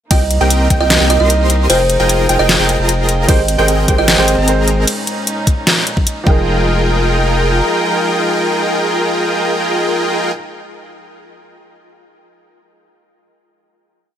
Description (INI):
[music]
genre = future bass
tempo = 151 BPM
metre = 4/4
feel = half-time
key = F minor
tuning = A4 = 440 Hz
[part]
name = buzzing kalimba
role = melody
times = 0.1-4.1 s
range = C5 to Eb5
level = -18 LUFS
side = right 4 dB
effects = vintage 12-bit sampler grit, sidechain pumping, tape echo
[part]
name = dark studio string section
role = sustained chords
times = 0.1-10.3 s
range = Bb2 to G5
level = -23 LUFS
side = equal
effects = vintage 12-bit sampler grit, sidechain pumping
[part]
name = wide unison pluck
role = arpeggios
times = 0.1-10.3 s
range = G5 to C6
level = -23 LUFS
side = equal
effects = sidechain pumping, tape echo
[part]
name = dense compressed supersaw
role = riff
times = 0.1-10.3 s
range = C4 to C6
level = -17 LUFS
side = equal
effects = sidechain pumping, tape echo
[part]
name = saturated sub bass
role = bass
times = 0.1-7.6 s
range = F1 to C2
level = -16 LUFS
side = equal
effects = sidechain pumping
[part]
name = electronic kick drum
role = drums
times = 0.1-0.8, 3.3-6.3 s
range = none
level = -13 LUFS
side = left 1 dB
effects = overdrive
[part]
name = pop drum kit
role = drums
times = 0.1-6.1 s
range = hi-hat, ride cymbal, snare drum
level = -16 LUFS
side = equal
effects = overdrive
[part]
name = dark grand piano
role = accompaniment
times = 3.3-10.3 s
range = F3 to G5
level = -22 LUFS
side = right 3 dB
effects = sidechain pumping, tape echo
[sound]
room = light reverb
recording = none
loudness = -11 LUFS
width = side -10 dB against mid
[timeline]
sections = 0.1-6.5 drop; 6.5-9.6 final hit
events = drop 0.1-6.5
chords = 0.1 Cm7; 1.7 Fm11; 3.3 Abmaj9; 4.9 Eb7sus4/Bb; 6.3 Fm11